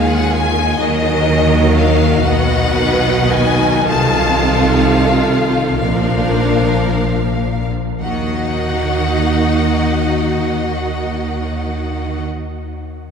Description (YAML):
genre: classical, slow romantic movement for string orchestra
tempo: 25-42 BPM (dotted quarters)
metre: 6/8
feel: rubato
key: Eb minor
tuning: A4 = 440 Hz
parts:
  - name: rich studio violin section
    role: melody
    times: 0.0-12.2 s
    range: Eb5 to A5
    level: -21 LUFS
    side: left 4 dB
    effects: none
  - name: rich studio violin section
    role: second line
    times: 0.0-12.2 s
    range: Gb4 to Ab5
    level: -21 LUFS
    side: left 1 dB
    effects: none
  - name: rich studio viola section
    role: accompaniment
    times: 0.0-12.2 s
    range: D#3 to Gb4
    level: -21 LUFS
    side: right 1 dB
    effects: none
  - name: rich studio cello section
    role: bass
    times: 0.0-12.2 s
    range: Bb2 to Eb3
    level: -20 LUFS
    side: equal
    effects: none
  - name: rich studio double bass section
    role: bass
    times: 0.0-12.2 s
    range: Bb1 to Eb2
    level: -18 LUFS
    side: right 2 dB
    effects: none
room: wet cathedral reverb, RT60 5.0 s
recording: recorded in a church or concert hall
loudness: -13 LUFS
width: side -6 dB against mid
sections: 0.0-8.0 A section; 8.0-12.2 B section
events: slowing down 0.0-8.0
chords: 0.0 N.C.; 0.8 Ebm; 2.3 B6; 3.9 F7/C; 5.8 Bb; 8.0 Ebm